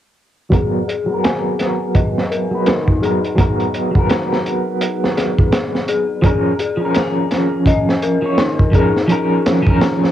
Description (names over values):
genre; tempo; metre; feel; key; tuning
trip hop; 84 BPM; 4/4; swing 60% on 16ths; G# dorian; A4 = 441 Hz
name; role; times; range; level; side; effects
electric guitar at the edge of break-up; accompaniment; 0.5-10.1 s; E#3 to C#5; -18 LUFS; right 1 dB; tremolo, vintage 12-bit sampler grit, low-pass filter, cassette tape, tape echo
dark detuned synth bell; arpeggios; 0.5-10.1 s; D#4 to G#5; -21 LUFS; left 5 dB; chorus, phaser, low-pass filter, cassette tape, tape echo
crunchy breakbeat drum kit; drums; 0.5-10.1 s; hi-hat, kick drum, snare drum; -17 LUFS; right 1 dB; low-pass filter on kick, cassette tape, low-pass filter on hats, low-pass filter on snare, low-pass filter on room
room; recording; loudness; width
moderate studio reverb, RT60 0.6 s; home recording on cassette; -14 LUFS; side -11 dB against mid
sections
0.5-10.1 A section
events
filter sweep on clean electric guitar 0.5-10.1; filter sweep on synth bell 0.5-10.1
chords
0.5 G#m9; 6.2 A#m